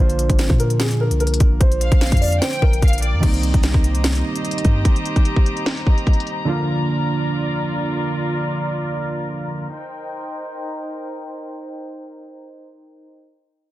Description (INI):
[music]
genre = hip hop, trap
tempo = 148 BPM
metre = 4/4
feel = half-time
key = C minor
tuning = A4 = 440 Hz
[part]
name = dark grand piano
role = melody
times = 0.0-3.2 s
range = Ab4 to D5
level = -25 LUFS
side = equal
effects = none
[part]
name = warbly lo-fi synth keys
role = accompaniment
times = 0.0-9.7 s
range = D3 to F4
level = -24 LUFS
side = right 2 dB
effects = chorus
[part]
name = warm 808-style bass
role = bass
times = 0.0-4.8 s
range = Ab1 to Bb2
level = -19 LUFS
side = equal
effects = none
[part]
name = trap drum kit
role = drums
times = 0.1-6.4 s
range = crash cymbal, hi-hat, kick drum, snare drum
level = -17 LUFS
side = equal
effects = none
[part]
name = warm studio violin section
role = second line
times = 1.8-3.2 s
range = D5 to G5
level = -28 LUFS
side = left 2 dB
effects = digital delay
[part]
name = warm studio string section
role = sustained chords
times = 3.2-13.1 s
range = Eb4 to Bb5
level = -27 LUFS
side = left 1 dB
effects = none
[sound]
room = small room ambience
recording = dense, heavily limited modern master, low-pass filter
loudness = -16 LUFS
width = side -16 dB against mid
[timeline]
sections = 0.0-3.2 A section; 3.2-9.7 B section; 9.7-13.0 C section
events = break 0.0-1.6; filter sweep 3.2-9.7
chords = 0.0 Bb; 3.2 Cm7; 6.5 Bb; 9.7 Cm7